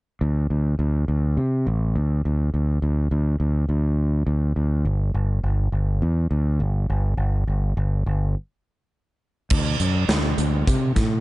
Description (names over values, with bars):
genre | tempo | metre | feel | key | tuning
classic rock | 103 BPM | 4/4 | straight | D mixolydian | A4 = 442 Hz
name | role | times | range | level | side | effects
growling fingered electric bass | bass | 0.2-11.2 s | G1 to C3 | -20 LUFS | equal | overdrive
big rock drum kit | drums | 9.5-11.1 s | crash cymbal, hi-hat, kick drum, snare drum | -22 LUFS | right 1 dB | none
room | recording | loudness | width
little or no reverb | nothing above 10.9 kHz | -20 LUFS | side -19 dB against mid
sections
0.2-9.5 A section; 9.5-11.2 B section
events
break 8.3-9.5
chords
none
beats
| 0.21 0.79 1.37 1.95 | 2.53 3.11 3.69 4.27 | 4.85 5.43 6.01 6.60 | 7.18 7.76 8.34 8.92 | 9.51 10.09 10.67